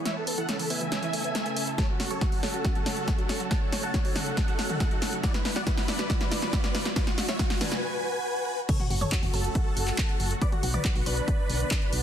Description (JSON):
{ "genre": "uplifting trance", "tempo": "139 BPM", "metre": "4/4", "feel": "straight", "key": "F# minor", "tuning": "A4 = 439 Hz", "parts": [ { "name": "analog string pad", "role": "sustained chords", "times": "0.0-12.0 s", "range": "C#3 to B4", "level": "-37 LUFS", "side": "left 1 dB", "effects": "ensemble chorus, sidechain pumping" }, { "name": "riser, swell and sub drop", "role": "sound effects", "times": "0.2-10.4 s", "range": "none", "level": "-39 LUFS", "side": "equal", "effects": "none" }, { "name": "big supersaw lead", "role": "melody", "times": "0.1-12.0 s", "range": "D4 to A5", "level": "-33 LUFS", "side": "equal", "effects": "phaser, cassette tape, sidechain pumping, low-pass filter, ping-pong delay" }, { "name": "analog pluck", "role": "arpeggios", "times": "0.1-7.8 s", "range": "E3 to A4", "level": "-36 LUFS", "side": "right 3 dB", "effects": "chorus, sidechain pumping, ping-pong delay" }, { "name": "punchy analog drum machine", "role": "drums", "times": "0.1-12.0 s", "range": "crash cymbal, handclaps, hi-hat, snare drum, toms", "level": "-31 LUFS", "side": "equal", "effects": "overdrive, sidechain pumping on hats, sidechain pumping on toms, sidechain pumping on cymbals" }, { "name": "electronic kick drum", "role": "drums", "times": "1.8-11.8 s", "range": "none", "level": "-27 LUFS", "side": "equal", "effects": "overdrive" }, { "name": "analog pluck", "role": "second line", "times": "8.7-12.0 s", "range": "F#4 to D5", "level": "-38 LUFS", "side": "left 1 dB", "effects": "chorus, sidechain pumping, ping-pong delay" }, { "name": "solid FM bass", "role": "bass", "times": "8.9-12.0 s", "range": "F#1 to B1", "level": "-29 LUFS", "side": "equal", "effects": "sidechain pumping" } ], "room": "light reverb", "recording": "dense, heavily limited modern master", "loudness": "-25 LUFS", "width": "side -9 dB against mid", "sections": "0.0-8.7 A section; 8.7-12.0 B section", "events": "build-up 0.0-8.7; drum fill 0.0-7.8; filter sweep on synth pluck 0.0-8.7; riser 0.2-7.8; break 7.8-8.7; swell 7.8-8.7; drop 8.7-12.0; impact 8.7-10.4", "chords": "0.1 Aadd9; 1.8 F#m; 5.2 Bm; 8.7 F#m; 10.4 Bm" }